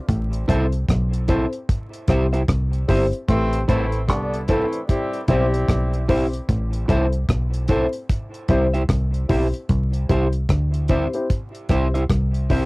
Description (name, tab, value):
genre	roots reggae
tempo	75 BPM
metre	4/4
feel	swing 61% on 16ths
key	C major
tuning	A4 = 440 Hz
part	deep dub fingered electric bass	bass	0.1-12.7 s	G1 to D2	-21 LUFS	equal	none
part	deep reggae drum kit	drums	0.1-12.7 s	hi-hat, kick drum, rim click	-23 LUFS	equal	none
part	electric guitar at the edge of break-up	accompaniment	0.5-12.7 s	E4 to E5	-26 LUFS	right 2 dB	cassette tape, dub echo
part	dark upright piano	stabs	0.5-12.7 s	C4 to C5	-24 LUFS	left 2 dB	cassette tape
part	mellow horn section	second line	3.3-6.0 s	C3 to G4	-26 LUFS	equal	cassette tape, dub echo
room	light reverb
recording	home recording on cassette, vinyl crackle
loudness	-18 LUFS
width	side -23 dB against mid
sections	0.0-9.7 A section; 9.7-12.7 B section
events	none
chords	0.1 Am; 1.7 C; 3.3 Am; 4.9 C; 6.5 Am; 8.1 C